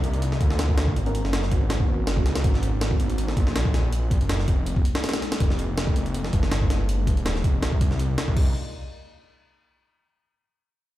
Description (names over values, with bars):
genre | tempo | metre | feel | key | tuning
drum and bass, jungle | 162 BPM | 4/4 | swing 54% on 16ths | C phrygian | A4 = 439 Hz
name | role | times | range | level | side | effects
lush unison pad | sustained chords | 0.0-8.5 s | Ab3 to Ab4 | -34 LUFS | equal | chorus, phaser, vintage 12-bit sampler grit
detuned saw bass | bass | 0.0-8.5 s | Eb1 to D2 | -25 LUFS | equal | none
breakbeat sampler-style drum kit | drums | 0.0-8.4 s | crash cymbal, hi-hat, kick drum, snare drum | -23 LUFS | equal | none
deep mellow chord stab | stabs | 1.1 s | Cb4 to Bb4 | -36 LUFS | equal | none
room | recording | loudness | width
little or no reverb | played on a big sound system in a bare room, large studio reverb | -21 LUFS | side -15 dB against mid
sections
0.0-8.4 A section; 8.4-9.8 B section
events
filter sweep on analog synth pad 0.0-8.4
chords
0.0 Cm11; 1.0 Abm11; 4.7 Fm11; 8.4 Cm11